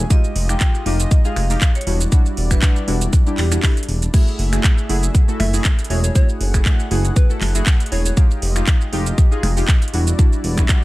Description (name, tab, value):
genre	deep house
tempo	119 BPM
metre	4/4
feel	swing 54% on 16ths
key	unclear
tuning	A4 = 440 Hz
part	warm analog pad	sustained chords	0.0-10.8 s	G3 to F#5	-31 LUFS	left 1 dB	chorus, sidechain pumping
part	deep mellow chord stab	stabs	0.0-10.8 s	G3 to A4	-25 LUFS	equal	analog chorus, sidechain pumping, tape echo
part	smooth synth bass	bass	0.0-10.6 s	E1 to F#1	-19 LUFS	equal	sidechain pumping
part	vibraphone with hard mallets	melody	0.1-3.7 s	G4 to G5	-31 LUFS	left 1 dB	vintage 12-bit sampler grit, tape echo
part	electronic kick drum	drums	0.1-10.8 s	none	-14 LUFS	equal	none
part	house drum kit	drums	0.1-10.8 s	crash cymbal, finger snaps, handclaps, hi-hat, shaker	-24 LUFS	right 2 dB	none
part	soft struck synth lead	melody	5.4-8.1 s	B4 to E5	-31 LUFS	left 1 dB	chorus, tape echo
part	congas	percussion	5.4-9.5 s	none	-26 LUFS	equal	none
room	little or no reverb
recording	none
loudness	-14 LUFS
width	side -18 dB against mid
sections	0.0-10.8 A section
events	none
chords	0.1 Fm9; 1.9 Em9; 4.1 F#m9; 8.2 Fm9; 9.9 Em9